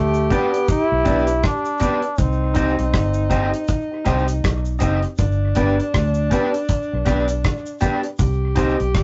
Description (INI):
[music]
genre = roots reggae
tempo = 80 BPM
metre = 4/4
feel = swing 60% on 16ths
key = G major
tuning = A4 = 438 Hz
[part]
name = brilliant trombone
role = melody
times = 0.0-3.7 s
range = A3 to E4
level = -25 LUFS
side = equal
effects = none
[part]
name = clear tenor saxophone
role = second line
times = 0.0-9.0 s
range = D4 to G4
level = -27 LUFS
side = equal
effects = none
[part]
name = vintage muted fingered electric bass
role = bass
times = 0.0-9.0 s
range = F#1 to D2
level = -24 LUFS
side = equal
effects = none
[part]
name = cabasa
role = percussion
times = 0.1-8.8 s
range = none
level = -46 LUFS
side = equal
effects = tape echo
[part]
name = electric guitar at the edge of break-up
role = accompaniment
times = 0.3-8.8 s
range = D4 to Eb5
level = -25 LUFS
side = equal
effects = none
[part]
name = warm grand piano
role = stabs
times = 0.3-8.8 s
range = B3 to C5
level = -27 LUFS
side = equal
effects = none
[part]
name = damped 70s drum kit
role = drums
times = 0.3-9.0 s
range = hi-hat, kick drum, rim click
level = -24 LUFS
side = equal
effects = none
[sound]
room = moderate booth ambience, RT60 0.2 s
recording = rough rehearsal-room recording, nothing above 7.9 kHz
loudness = -20 LUFS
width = mono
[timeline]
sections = 0.0-9.0 A section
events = none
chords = 0.0 G; 2.2 Cm; 5.2 G; 8.2 Cm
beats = 0.68 1.43 | 2.19 2.94 3.69 4.44 | 5.19 5.94 6.69 7.44 | 8.19 8.94